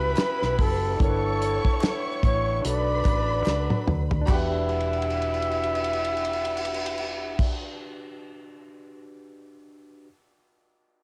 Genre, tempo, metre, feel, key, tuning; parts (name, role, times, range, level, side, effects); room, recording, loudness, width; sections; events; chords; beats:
lush 1970s-style soul; 73 BPM; 4/4; swing 58% on 16ths; E dorian; A4 = 442 Hz
breathy flugelhorn; melody; 0.0-7.5 s; A4 to E5; -30 LUFS; equal; cassette tape
warm studio string section; second line; 0.0-7.5 s; G4 to C#6; -36 LUFS; equal; cassette tape
barky tine electric piano; accompaniment; 0.0-10.1 s; C#4 to D5; -36 LUFS; equal; overdrive, subtle chorus, cassette tape
muted French horn section; sustained chords; 0.0-7.5 s; C#3 to E4; -41 LUFS; equal; cassette tape
hollow-body short-scale fingered electric bass; bass; 0.0-7.5 s; E1 to D2; -32 LUFS; equal
damped 70s drum kit; drums; 0.2-9.0 s; crash cymbal, hi-hat, kick drum, ride cymbal, snare drum, toms; -29 LUFS; equal; cassette tape
group handclap; percussion; 0.2-7.5 s; -46 LUFS; equal
small room ambience; home recording on cassette; -25 LUFS; mono
0.0-4.3 A section; 4.3-7.6 B section
drum fill 3.5-4.3, 4.7-7.4
0.0 A13; 1.0 G69; 2.6 Bm9; 4.3 Em9
0.18 | 1.00 1.82 2.64 3.46 | 4.28 5.10 5.92 6.75